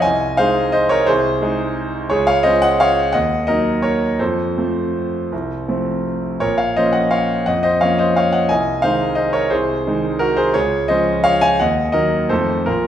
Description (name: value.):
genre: classical, piano waltz.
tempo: 157-184 BPM.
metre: 3/4.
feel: rubato.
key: unclear.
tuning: A4 = 441 Hz.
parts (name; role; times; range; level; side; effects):
clear concert grand piano; solo; 0.0-12.9 s; Bb1 to Ab5; -15 LUFS; equal; none.
room: moderate recital hall reverb, RT60 1.3 s.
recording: minimal, uncompressed stereo recording.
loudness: -15 LUFS.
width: side -10 dB against mid.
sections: 0.0-12.9 A section.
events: none.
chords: 0.0 Ab/C; 2.1 Db; 3.1 Ebm; 4.2 F; 6.4 Bbm; 8.5 Ab/C; 10.6 Db; 11.6 Ebm; 12.3 F7.